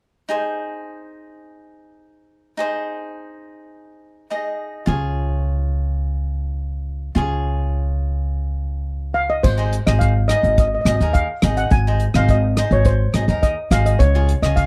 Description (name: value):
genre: calypso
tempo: 105 BPM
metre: 4/4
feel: straight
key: unclear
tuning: A4 = 440 Hz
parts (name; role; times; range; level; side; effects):
- cavaquinho; accompaniment; 0.3-14.7 s; Eb4 to Eb5; -28 LUFS; equal; none
- upright bass; bass; 4.9-14.7 s; Ab1 to Eb2; -21 LUFS; equal; none
- steel pan; melody; 9.1-14.7 s; C5 to Ab5; -24 LUFS; equal; none
- unplugged drum kit; drums; 9.4-14.7 s; crash cymbal, hi-hat, kick drum, rim click; -21 LUFS; equal; none
room: little or no reverb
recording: dry, close 1970s-style studio recording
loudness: -20 LUFS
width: mono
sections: 0.3-9.4 A section; 9.4-14.7 B section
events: none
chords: 0.3 Ab; 4.9 Db; 9.4 Ab; 14.0 Dbadd9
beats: | 0.29 0.86 1.43 2.01 | 2.58 3.15 3.72 4.30 | 4.87 5.44 6.01 6.58 | 7.15 7.72 8.29 8.87 | 9.44 10.01 10.58 11.15 | 11.72 12.29 12.86 13.43 | 14.00 14.57